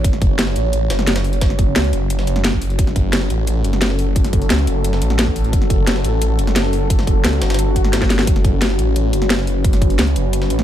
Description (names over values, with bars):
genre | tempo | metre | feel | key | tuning
dark technical drum and bass | 175 BPM | 4/4 | straight | F# phrygian | A4 = 444 Hz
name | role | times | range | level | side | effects
deep dark ambient pad | sustained chords | 0.0-10.6 s | C#4 to C#5 | -23 LUFS | left 1 dB | chorus, built-in reverb, sidechain pumping
snarling distorted saw bass | bass | 0.0-10.6 s | F#1 to C#2 | -18 LUFS | equal | overdrive, sidechain pumping
drum and bass drum kit | drums | 0.0-10.6 s | hi-hat, snare drum | -20 LUFS | equal | overdrive, small room ambience
electronic kick drum | drums | 0.0-9.9 s | none | -17 LUFS | equal | small room ambience
jungle sampler-style drum kit | drums | 0.0-10.6 s | hi-hat, snare drum | -29 LUFS | equal | high-pass filter on snare, small room ambience, high-pass filter on hats, high-pass filter on room
swell | sound effects | 7.7-8.3 s | none | -28 LUFS | right 1 dB | none
room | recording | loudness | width
little or no reverb | none | -14 LUFS | side -11 dB against mid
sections
0.0-10.6 A section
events
swell 7.7-8.3; drum fill 7.9-8.3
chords
0.0 F#5